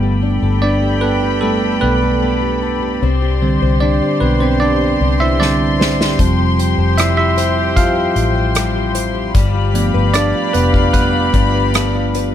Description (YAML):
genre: pop ballad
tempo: 76 BPM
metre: 4/4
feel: straight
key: unclear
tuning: A4 = 439 Hz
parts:
  - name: bell-like tine electric piano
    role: accompaniment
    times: 0.0-12.3 s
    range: D3 to F5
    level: -17 LUFS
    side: right 4 dB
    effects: none
  - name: warm studio string section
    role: sustained chords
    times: 0.0-12.3 s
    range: G4 to C6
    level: -21 LUFS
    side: left 4 dB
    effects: none
  - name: nylon-string guitar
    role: arpeggios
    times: 0.0-12.3 s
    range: F3 to C5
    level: -23 LUFS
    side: left 12 dB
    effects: tape echo
  - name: vintage muted fingered electric bass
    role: bass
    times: 0.0-12.3 s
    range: F1 to C2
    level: -18 LUFS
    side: left 1 dB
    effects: none
  - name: unplugged drum kit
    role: drums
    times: 5.4-12.3 s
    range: hi-hat, kick drum, rim click, snare drum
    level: -17 LUFS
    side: equal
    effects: none
room: studio reverb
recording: none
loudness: -12 LUFS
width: side -10 dB against mid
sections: 0.0-12.3 A section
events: tine electric piano solo 0.0-12.3; drum fill 5.4-6.2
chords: 0.0 Gadd9; 3.0 Csus2; 6.2 Fsus2; 9.3 G7